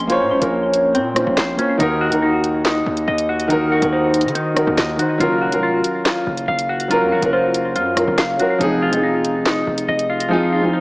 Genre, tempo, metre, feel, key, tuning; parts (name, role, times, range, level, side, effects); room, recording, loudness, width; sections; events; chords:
hip hop, drill; 141 BPM; 4/4; half-time; A4 = 439 Hz
dark grand piano; accompaniment; 0.0-10.8 s; Eb3 to Eb5; -19 LUFS; equal
semi-hollow electric guitar; arpeggios; 0.0-10.8 s; Bb3 to C6; -20 LUFS; left 1 dB; phaser, digital delay
distorted 808-style bass; bass; 0.0-10.3 s; F1 to Eb3; -27 LUFS; equal; distortion
warm velvety synth lead; second line; 0.1-10.8 s; Ab4 to Db5; -22 LUFS; equal; chorus, digital delay
drill drum kit; drums; 0.1-10.3 s; handclaps, hi-hat, rim click, snare drum; -22 LUFS; equal
light reverb, digital ambience; small speaker sound; -15 LUFS; side -25 dB against mid
0.0-10.8 A section
0.0 Bbmadd9; 1.8 Ebm; 5.2 Gbmaj7; 8.6 Fm7